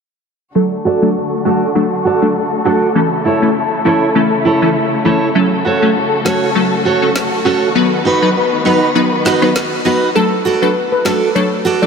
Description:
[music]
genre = dancehall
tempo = 100 BPM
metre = 4/4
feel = swing 56% on 16ths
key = unclear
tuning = A4 = 440 Hz
[part]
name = wavetable chord stab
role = accompaniment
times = 0.6-11.9 s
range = E3 to B4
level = -16 LUFS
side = left 2 dB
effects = analog chorus, low-pass filter
[part]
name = warm studio string section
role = sustained chords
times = 0.6-10.1 s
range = C#3 to B4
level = -18 LUFS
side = left 3 dB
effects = low-pass filter
[part]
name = picked steel-string acoustic guitar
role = arpeggios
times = 0.8-11.9 s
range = D#4 to D5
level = -16 LUFS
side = right 4 dB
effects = low-pass filter, tape echo
[part]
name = electronic snare drum and rim click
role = drums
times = 6.3-11.2 s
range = none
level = -24 LUFS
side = left 1 dB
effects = none
[part]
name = steel pan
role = melody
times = 10.2-11.9 s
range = A4 to D5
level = -17 LUFS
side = equal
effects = tape echo
[sound]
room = wet huge ambient reverb, RT60 7.5 s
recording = dreamy mix soaked in reverb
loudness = -11 LUFS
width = side -6 dB against mid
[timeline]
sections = 0.6-10.2 A section; 10.2-11.9 B section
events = filter sweep 0.6-10.2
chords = 0.6 D; 3.0 A; 5.4 F#m; 7.8 B; 10.2 D

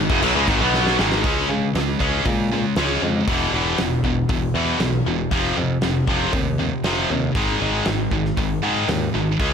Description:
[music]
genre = hard rock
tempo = 118 BPM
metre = 4/4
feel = straight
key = unclear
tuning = A4 = 441 Hz
[part]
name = distorted electric guitar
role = riff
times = 0.0-1.2 s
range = Gb2 to Cb4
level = -24 LUFS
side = equal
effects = overdrive
[part]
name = scooped high-gain guitar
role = riff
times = 0.0-9.5 s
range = E2 to Db4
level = -23 LUFS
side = right 10 dB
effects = distortion
[part]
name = tight distorted guitar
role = riff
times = 0.0-9.5 s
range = E2 to Db4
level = -23 LUFS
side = left 10 dB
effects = distortion
[part]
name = modern bright picked electric bass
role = bass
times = 0.0-9.5 s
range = E1 to Db3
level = -25 LUFS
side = equal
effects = none
[part]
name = big rock drum kit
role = drums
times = 0.1-9.5 s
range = crash cymbal, hi-hat, kick drum, snare drum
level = -25 LUFS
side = equal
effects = none
[sound]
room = studio ambience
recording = none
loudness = -18 LUFS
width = side -7 dB against mid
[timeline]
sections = 0.0-1.2 A section; 1.2-9.5 B section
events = drum fill 0.7-1.2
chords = 0.0 Ab5; 1.2 Db5; 3.3 E5; 5.3 F5; 7.4 Ab5

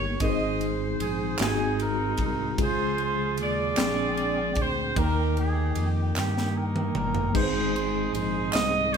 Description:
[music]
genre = slow gospel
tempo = 50 BPM (dotted quarters)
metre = 6/8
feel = straight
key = Ab major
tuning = A4 = 440 Hz
[part]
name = clear horn section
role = melody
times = 0.0-9.0 s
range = Bb3 to Eb5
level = -29 LUFS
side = right 1 dB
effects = none
[part]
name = mellow tine electric piano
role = accompaniment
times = 0.0-9.0 s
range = Ab2 to G5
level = -29 LUFS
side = left 1 dB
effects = medium stereo tremolo
[part]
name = mellow tonewheel organ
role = sustained chords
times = 0.0-9.0 s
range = Db3 to G5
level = -35 LUFS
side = right 3 dB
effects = chorus vibrato, fast rotary speaker
[part]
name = smooth gliding synth bass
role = bass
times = 0.0-9.0 s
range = G1 to G2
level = -31 LUFS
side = equal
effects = none
[part]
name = crisp fusion drum kit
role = drums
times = 0.2-9.0 s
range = crash cymbal, kick drum, ride cymbal, snare drum, toms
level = -31 LUFS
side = equal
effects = none
[part]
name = group handclap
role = percussion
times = 1.4-8.9 s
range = none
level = -34 LUFS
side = right 3 dB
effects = none
[sound]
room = moderate stone room reverb, RT60 1.0 s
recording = band playing live in one room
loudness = -24 LUFS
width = side -6 dB against mid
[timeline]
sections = 0.0-7.3 A section; 7.3-9.0 A section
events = drum fill 6.2-7.3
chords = 0.2 Ab; 1.4 Ab7; 2.6 Db; 3.8 Bb13; 5.0 Eb; 7.3 Ab

